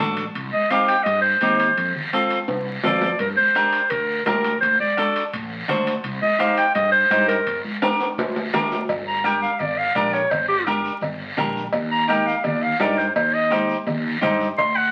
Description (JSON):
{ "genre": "latin, cumbia", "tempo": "169 BPM", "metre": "4/4", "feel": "straight", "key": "G minor", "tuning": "A4 = 445 Hz", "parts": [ { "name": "clean electric guitar", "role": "accompaniment", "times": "0.0-14.5 s", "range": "C4 to C5", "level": "-25 LUFS", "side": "equal", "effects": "none" }, { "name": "mellow fretless electric bass", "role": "bass", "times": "0.0-14.9 s", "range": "G1 to G2", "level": "-32 LUFS", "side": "equal", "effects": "none" }, { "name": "congas", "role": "percussion", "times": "0.0-14.8 s", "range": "none", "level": "-34 LUFS", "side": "equal", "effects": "none" }, { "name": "guiro", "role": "percussion", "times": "0.0-14.9 s", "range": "none", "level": "-36 LUFS", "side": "equal", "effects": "none" }, { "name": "timbales and cowbell", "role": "percussion", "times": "0.2-14.8 s", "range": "none", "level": "-30 LUFS", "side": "equal", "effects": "none" }, { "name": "clear clarinet", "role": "melody", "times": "0.5-14.9 s", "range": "G4 to C6", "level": "-22 LUFS", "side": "equal", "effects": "none" }, { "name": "bombo", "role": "percussion", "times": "3.2-14.8 s", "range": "none", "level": "-37 LUFS", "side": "equal", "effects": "none" } ], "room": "wet studio reverb, RT60 0.8 s", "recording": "very old 78 rpm record, vinyl crackle", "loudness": "-21 LUFS", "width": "mono", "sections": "0.0-8.9 A section; 8.9-14.9 B section", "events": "drum fill 2.5-3.2, 7.8-8.9; clarinet solo 8.9-14.9", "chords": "0.3 Cm; 1.8 F; 3.2 Gm; 4.6 D7; 6.0 Cm; 7.5 Gm; 11.7 Eb" }